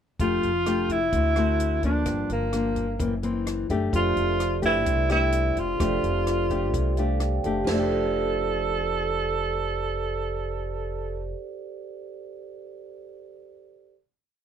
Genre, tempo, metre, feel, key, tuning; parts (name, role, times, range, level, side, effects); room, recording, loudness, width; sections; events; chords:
bossa nova; 128 BPM; 4/4; straight; F major; A4 = 440 Hz
breathy tenor saxophone; melody; 0.2-11.3 s; Bb3 to A4; -26 LUFS; right 1 dB
nylon-string guitar; accompaniment; 0.2-11.5 s; Gb2 to G4; -29 LUFS; left 4 dB
upright bass; bass; 0.2-11.3 s; F1 to D2; -29 LUFS; equal
compact cocktail drum kit; drums; 0.2-7.8 s; crash cymbal, hi-hat, kick drum, rim click, snare drum; -33 LUFS; equal
vibraphone with soft mallets; accompaniment; 3.9-13.9 s; G4 to A5; -31 LUFS; right 7 dB
light reverb; -23 LUFS; side -8 dB against mid
0.2-7.7 A section; 7.7-11.4 final chord
vibraphone fill 6.7-7.7
0.2 F69; 1.1 D7; 2.1 Gm7; 3.0 Gb7#11; 3.9 F69